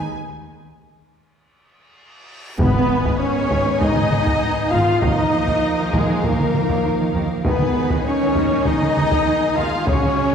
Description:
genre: cinematic, epic orchestral film score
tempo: 99 BPM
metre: 4/4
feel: straight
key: G# dorian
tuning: A4 = 440 Hz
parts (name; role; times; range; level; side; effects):
- clear studio violin section; melody; 0.0-10.3 s; G#4 to G#5; -31 LUFS; left 4 dB; none
- warm French horn section; sustained chords; 0.0-10.3 s; G#3 to G#4; -22 LUFS; left 1 dB; none
- warm trombone section; sustained chords; 0.0-10.3 s; D#3 to B3; -28 LUFS; right 2 dB; none
- reverse cymbal and impact; sound effects; 2.1-5.0 s; none; -34 LUFS; equal; none
- warm symphonic violin section; second line; 2.6-10.3 s; G#4 to E#5; -26 LUFS; left 4 dB; none
- warm symphonic viola section; accompaniment; 2.6-10.3 s; G#3 to E#4; -26 LUFS; right 2 dB; none
- rich symphonic string section; sustained chords; 2.6-10.3 s; A#3 to G#5; -28 LUFS; equal; none
- warm symphonic cello section; bass; 2.6-10.3 s; G#2 to D#3; -27 LUFS; right 2 dB; none
- warm symphonic double bass section; bass; 2.6-10.2 s; G#1 to D#2; -27 LUFS; right 2 dB; none
- taiko ensemble; drums; 2.6-10.3 s; none; -23 LUFS; equal; none
- timpani; percussion; 2.6-5.9 s; G#2 to D#3; -28 LUFS; equal; none
room: wet scoring stage reverb, RT60 1.8 s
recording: heard from further back in the room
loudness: -16 LUFS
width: side -7 dB against mid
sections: 0.0-2.6 A section; 2.6-10.3 B section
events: break 0.2-2.6; drum fill 2.0-2.6; reverse cymbal 2.1-2.6; impact 2.6-5.0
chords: 0.2 N.C.; 2.6 G#m; 5.0 D#sus2; 7.4 G#m/D#

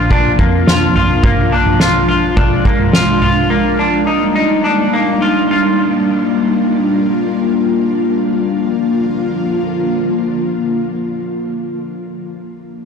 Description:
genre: dream pop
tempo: 90-106 BPM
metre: 4/4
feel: straight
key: Bb mixolydian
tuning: A4 = 440 Hz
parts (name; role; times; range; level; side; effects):
- ethereal airy pad; sustained chords; 0.0-11.5 s; D3 to F4; -15 LUFS; equal; ensemble chorus, built-in reverb
- clean electric guitar; arpeggios; 0.0-5.8 s; Bb3 to F4; -17 LUFS; left 2 dB; lush chorus, tape echo
- vintage muted fingered electric bass; bass; 0.0-1.2 s; Bb1 to F2; -17 LUFS; equal; transformer saturation
- soft-mallet drum kit; drums; 0.1-3.3 s; kick drum, snare drum, toms; -14 LUFS; equal; none
room: wet huge ambient reverb, RT60 7.7 s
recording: blown-out, overdriven recording, overdrive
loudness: -12 LUFS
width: side -6 dB against mid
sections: 0.0-8.3 A section; 8.3-11.0 B section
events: slowing down 3.5-8.3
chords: 0.0 Bb; 3.5 Ebmaj7; 8.3 Bb

